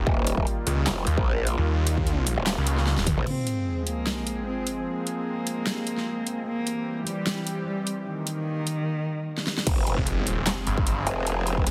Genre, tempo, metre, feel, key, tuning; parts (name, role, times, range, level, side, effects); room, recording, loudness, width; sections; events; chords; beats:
heavy wobble dubstep; 150 BPM; 4/4; swing 54% on 16ths, half-time; F minor; A4 = 440 Hz
supersaw pad; sustained chords; 0.0-11.7 s; Eb3 to Ab4; -36 LUFS; equal; sidechain pumping, low-pass filter
snarling distorted saw bass; bass; 0.0-3.2, 10.0-11.7 s; Eb1 to Eb2; -27 LUFS; equal; distortion, overdrive
growl bass; bass; 0.1-3.3, 9.7-11.7 s; Eb1 to Bb1; -28 LUFS; equal; chorus, overdrive
electronic kick drum; drums; 0.1-3.2, 9.7-11.6 s; -28 LUFS; equal
big-room dance drum kit; drums; 0.3-11.7 s; crash cymbal, handclaps, hi-hat, snare drum, toms; -32 LUFS; equal
dark cello; melody; 3.3-9.6 s; Eb3 to C4; -32 LUFS; equal; tape echo
sub drop and impact; sound effects; 3.3-4.9, 9.7-11.3 s; -35 LUFS; equal
light reverb; heavily compressed radio sound; -27 LUFS; mono
0.0-3.3 A section; 3.3-9.7 B section; 9.7-11.7 A section
drop 0.0-3.3, 9.7-11.7; drum fill 2.9-3.3, 9.4; impact 3.3-4.9, 9.7-11.3
0.0 Eb; 3.3 Fm; 6.5 C; 8.1 Eb; 9.7 Fm
| 0.07 0.47 0.87 1.27 | 1.67 2.07 2.47 2.87 | 3.27 3.67 4.07 4.47 | 4.87 5.27 5.67 6.07 | 6.47 6.87 7.27 7.67 | 8.07 8.47 8.87 9.27 | 9.67 10.07 10.47 10.87 | 11.27 11.67